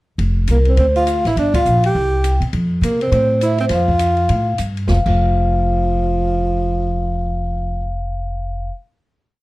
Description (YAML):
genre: jazz, small-group swing and bop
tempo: 204 BPM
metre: 4/4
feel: swing 60% on 8ths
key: F major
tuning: A4 = 440 Hz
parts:
  - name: upright bass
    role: bass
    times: 0.2-8.7 s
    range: F1 to C3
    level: -18 LUFS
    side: equal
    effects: none
  - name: open jazz drum kit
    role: drums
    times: 0.2-5.1 s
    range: crash cymbal, hi-hat, kick drum, ride cymbal, snare drum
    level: -26 LUFS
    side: equal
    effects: none
  - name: vibraphone with medium mallets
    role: melody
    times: 0.5-8.7 s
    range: Bb4 to G5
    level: -20 LUFS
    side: left 1 dB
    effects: none
  - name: mellow tenor saxophone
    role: second line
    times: 0.5-8.0 s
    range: F3 to G4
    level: -22 LUFS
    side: right 3 dB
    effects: none
room: little or no reverb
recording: dry, close 1970s-style studio recording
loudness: -15 LUFS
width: side -19 dB against mid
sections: 0.2-4.9 A section; 4.9-7.2 final note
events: band accent 1.5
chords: 0.2 F5; 0.8 Dm; 1.4 Gm7; 1.9 C5; 2.5 Fadd9; 4.9 N.C.